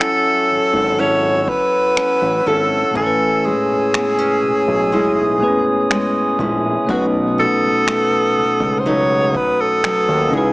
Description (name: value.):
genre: contemporary R&B.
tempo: 61 BPM.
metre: 4/4.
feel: straight.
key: unclear.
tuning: A4 = 440 Hz.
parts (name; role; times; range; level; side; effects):
breathy alto saxophone; melody; 0.0-10.5 s; F#4 to C#5; -17 LUFS; equal; none.
bell-like tine electric piano; accompaniment; 0.0-10.5 s; A2 to G#5; -22 LUFS; left 1 dB; fast stereo tremolo.
glass harmonica; sustained chords; 0.0-10.5 s; B4 to E6; -22 LUFS; equal; none.
nylon-string guitar; arpeggios; 0.0-10.5 s; A2 to A4; -23 LUFS; equal; none.
booming analog drum machine; drums; 0.0-10.1 s; finger snaps, kick drum; -25 LUFS; equal; overdrive.
fat analog bass; bass; 0.5-10.5 s; G#1 to D#2; -23 LUFS; equal; none.
room: light reverb, small room ambience.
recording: small speaker sound.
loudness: -14 LUFS.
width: side -24 dB against mid.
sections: 0.0-10.5 A section.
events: break 0.0-10.5.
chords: 0.0 F#m7; 3.0 Amaj7; 6.9 B7.